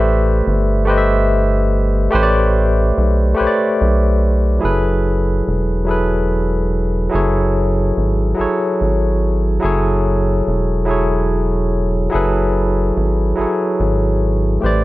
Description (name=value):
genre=slow six-eight R&B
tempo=48 BPM (dotted quarters)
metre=6/8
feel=straight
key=F# minor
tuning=A4 = 439 Hz
part: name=barky tine electric piano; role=accompaniment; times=0.0-14.8 s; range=F#3 to E5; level=-16 LUFS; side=equal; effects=medium stereo tremolo
part: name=rubbery square bass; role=bass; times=0.0-14.8 s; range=E1 to B1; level=-17 LUFS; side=equal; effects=none
room=little or no reverb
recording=dark, warm production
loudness=-14 LUFS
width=side -18 dB against mid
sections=0.0-4.6 A section; 4.6-14.8 B section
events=none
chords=0.0 Am11; 4.6 F#m11